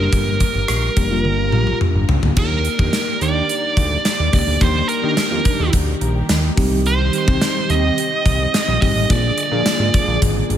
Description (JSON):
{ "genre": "1980s-style pop", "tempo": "107 BPM", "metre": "4/4", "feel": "straight", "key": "unclear", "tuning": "A4 = 440 Hz", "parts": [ { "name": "high-gain lead guitar", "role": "melody", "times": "0.0-10.2 s", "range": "Bb4 to Eb5", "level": "-21 LUFS", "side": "right 3 dB", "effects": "distortion, tape echo, shimmer reverb" }, { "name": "FM electric piano with soft pad layer", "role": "accompaniment", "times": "0.0-10.6 s", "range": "G3 to Bb5", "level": "-24 LUFS", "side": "left 2 dB", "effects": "chorus, shimmer reverb" }, { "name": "fat analog bass", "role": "bass", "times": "0.0-10.6 s", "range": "F1 to Eb3", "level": "-20 LUFS", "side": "equal", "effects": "none" }, { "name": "gated 80s drum kit", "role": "drums", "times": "0.1-10.6 s", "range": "crash cymbal, hi-hat, kick drum, rim click, snare drum, tambourine, toms", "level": "-19 LUFS", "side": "equal", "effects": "gated reverb" }, { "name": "string machine, cellos", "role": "sustained chords", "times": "2.4-10.6 s", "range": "D3 to D5", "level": "-28 LUFS", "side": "right 1 dB", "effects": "phaser, ensemble chorus, shimmer reverb" }, { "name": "mellow synth brass", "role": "stabs", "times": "2.8-10.2 s", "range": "Eb3 to Ab4", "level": "-29 LUFS", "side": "right 2 dB", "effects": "none" } ], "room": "light reverb, studio ambience", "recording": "none", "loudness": "-15 LUFS", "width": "side -10 dB against mid", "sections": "0.0-2.4 A section; 2.4-10.6 B section", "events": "drum fill 1.2-2.4; FM electric piano fill 5.7-6.9", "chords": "0.0 Gm; 2.4 Ebmaj7; 6.6 Cm; 9.1 Bb7" }